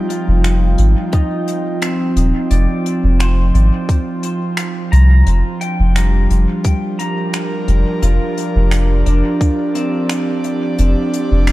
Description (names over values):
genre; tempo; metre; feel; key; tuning
ambient dub; 87 BPM; 4/4; swing 53% on 16ths; unclear; A4 = 440 Hz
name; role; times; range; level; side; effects
airy breathy pad; sustained chords; 0.0-11.5 s; F3 to G5; -20 LUFS; right 2 dB; chorus
pedal steel guitar; arpeggios; 0.0-11.5 s; G3 to Bb5; -22 LUFS; left 1 dB; low-pass filter, tape echo
jazz brush drum kit; drums; 0.1-11.5 s; finger snaps, hi-hat; -26 LUFS; left 1 dB; dub echo
soft dub sub bass; bass; 0.3-11.5 s; Eb1 to C2; -12 LUFS; equal; none
electronic kick drum; drums; 1.1-9.6 s; none; -14 LUFS; equal; none
room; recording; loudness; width
light reverb, small room ambience; dark, warm production; -13 LUFS; side -17 dB against mid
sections
0.0-11.5 A section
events
none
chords
0.0 F7(no3); 5.3 Gm7/F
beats
0.44 1.13 1.82 | 2.51 3.20 3.89 4.58 | 5.27 5.96 6.65 7.34 | 8.03 8.72 9.41 10.10 | 10.79 11.47